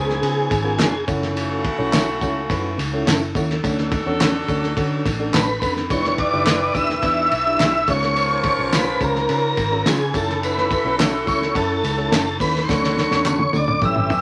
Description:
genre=uptempo 1960s-style soul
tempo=106 BPM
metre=4/4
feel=straight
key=unclear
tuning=A4 = 444 Hz
part: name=tonewheel organ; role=melody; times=0.0-1.0, 5.3-14.2 s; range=G#4 to E5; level=-23 LUFS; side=equal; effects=chorus vibrato, slow rotary speaker
part: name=bright saxophone section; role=second line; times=0.0-14.2 s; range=C#3 to B4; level=-29 LUFS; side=equal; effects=none
part: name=glockenspiel with hard plastic mallets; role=second line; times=0.0-1.0, 5.3-14.2 s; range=G#5 to E6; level=-34 LUFS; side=equal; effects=none
part: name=reed electric piano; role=accompaniment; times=0.0-14.2 s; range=A2 to E5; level=-29 LUFS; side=equal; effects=overdrive, fast tremolo
part: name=vintage muted fingered electric bass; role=bass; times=0.0-14.1 s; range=E1 to D3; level=-29 LUFS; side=equal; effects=none
part: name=cloth-damped thuddy drum kit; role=drums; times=0.1-14.2 s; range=hi-hat, kick drum, ride cymbal, snare drum, toms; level=-26 LUFS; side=equal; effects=none
part: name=tambourine and handclaps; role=percussion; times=0.2-14.2 s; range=none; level=-35 LUFS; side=equal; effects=none
part: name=electric guitar through a small old amp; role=stabs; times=0.8-13.4 s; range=E#3 to B4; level=-29 LUFS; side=equal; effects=none
room=wet small room reverb, RT60 0.5 s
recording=none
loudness=-20 LUFS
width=mono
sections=0.0-14.2 A section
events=drum fill 12.7-14.2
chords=0.0 C#7; 1.1 F#m7; 3.6 Dmaj7; 5.9 Em7; 7.9 C#7; 10.1 F#m7; 12.7 Dmaj7

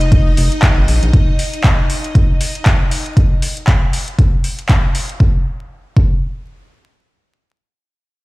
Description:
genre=deep house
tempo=118 BPM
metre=4/4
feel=swing 57% on 16ths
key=unclear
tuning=A4 = 440 Hz
part: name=round analog bass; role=bass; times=0.0-1.1 s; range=F1 to Bb1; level=-14 LUFS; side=equal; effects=tube saturation, sidechain pumping
part: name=deep house drum kit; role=drums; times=0.0-5.2 s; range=handclaps, hi-hat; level=-22 LUFS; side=equal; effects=overdrive, small room ambience
part: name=string machine, violins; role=texture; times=0.0-3.2 s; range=Eb4 to Eb5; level=-25 LUFS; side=left 1 dB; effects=ensemble chorus, sidechain pumping
part: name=electronic kick drum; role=drums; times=0.1-6.1 s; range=none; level=-12 LUFS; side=equal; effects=overdrive, small room ambience
room=little or no reverb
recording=played on a big sound system in a bare room, large studio reverb, vinyl crackle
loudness=-12 LUFS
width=side -21 dB against mid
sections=0.0-5.2 A section; 5.2-8.2 B section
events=none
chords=0.0 F7(no3); 0.9 N.C.

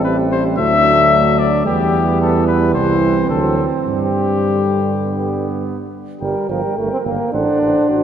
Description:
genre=classical, brass quintet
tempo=101-113 BPM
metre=4/4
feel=rubato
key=G major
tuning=A4 = 443 Hz
part: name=mellow cornet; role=melody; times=0.0-8.0 s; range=G4 to G5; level=-19 LUFS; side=left 5 dB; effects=none
part: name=mellow flugelhorn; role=second line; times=0.0-8.0 s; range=B3 to C5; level=-23 LUFS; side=right 7 dB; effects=none
part: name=clear trombone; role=accompaniment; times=0.0-8.0 s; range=D3 to D4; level=-20 LUFS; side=right 2 dB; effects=none
part: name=mellow French horn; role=accompaniment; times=0.0-8.0 s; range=F#3 to A4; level=-21 LUFS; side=left 2 dB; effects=none
part: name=warm tuba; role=bass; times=0.0-8.0 s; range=G1 to G2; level=-20 LUFS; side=right 2 dB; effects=none
room=wet church reverb, RT60 3.6 s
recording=none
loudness=-14 LUFS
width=side -9 dB against mid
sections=0.0-6.2 A section; 6.2-8.0 B section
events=none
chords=0.0 Am7; 0.6 D; 1.7 Em; 2.7 C; 3.3 D7; 3.9 G; 6.2 Gm; 7.3 D7/A

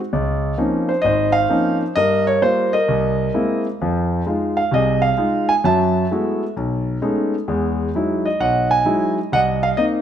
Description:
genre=solo jazz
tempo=130 BPM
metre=4/4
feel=swing 66% on 8ths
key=Db major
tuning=A4 = 438 Hz
part: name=warm concert grand piano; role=solo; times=0.1-10.0 s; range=Ab1 to A5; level=-16 LUFS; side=equal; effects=none
room=moderate large studio reverb, RT60 1.3 s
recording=none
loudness=-16 LUFS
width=side -9 dB against mid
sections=0.1-10.0 A section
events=none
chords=0.1 Dbmaj13; 2.0 Eb13/G; 2.9 C7alt; 3.8 Fm7; 5.6 Gbm11; 6.6 Cb13; 7.5 Emaj9; 9.3 Cm7

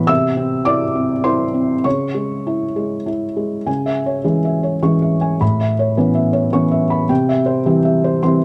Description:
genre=neoclassical minimalist piano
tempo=97-108 BPM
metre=3/4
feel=rubato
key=unclear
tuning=A4 = 438 Hz
part: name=felt-muted upright piano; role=solo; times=0.0-8.4 s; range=A2 to E6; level=-17 LUFS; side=equal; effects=none
room=light reverb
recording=dark, warm production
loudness=-17 LUFS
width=mono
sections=0.0-3.7 A section; 3.7-8.4 B section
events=none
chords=0.1 C; 1.8 C#m; 5.4 Aadd9; 7.1 C

